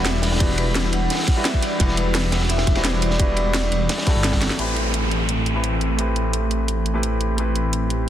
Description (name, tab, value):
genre	liquid drum and bass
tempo	172 BPM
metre	4/4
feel	straight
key	A dorian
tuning	A4 = 444 Hz
part	vibraphone with medium hard mallets	melody	0.0-4.4 s	B4 to F#5	-29 LUFS	right 1 dB	dub echo
part	warm concert grand piano	accompaniment	0.0-8.1 s	G3 to B4	-26 LUFS	left 1 dB	dub echo
part	airy breathy pad	sustained chords	0.0-8.1 s	E3 to G4	-28 LUFS	equal	chorus, phaser, sidechain pumping
part	swelling detuned saw bass	bass	0.0-8.1 s	E1 to A1	-23 LUFS	equal	tube saturation
part	crunchy breakbeat drum kit	drums	0.1-4.5 s	hi-hat, ride cymbal, snare drum	-28 LUFS	equal	high-pass filter on cymbals, high-pass filter on hats, high-pass filter on snare, high-pass filter on room
part	garage drum kit	drums	0.1-8.0 s	hi-hat, snare drum	-26 LUFS	right 1 dB	overdrive
part	electronic kick drum	drums	0.4-4.4 s	none	-20 LUFS	equal	overdrive
part	downlifter	sound effects	4.6-7.4 s	none	-28 LUFS	equal	none
room	light reverb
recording	dense, heavily limited modern master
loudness	-18 LUFS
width	side -11 dB against mid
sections	0.0-4.6 A section; 4.6-8.1 B section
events	drop 0.0-4.6; drum fill 4.3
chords	0.0 Em9; 4.6 Am7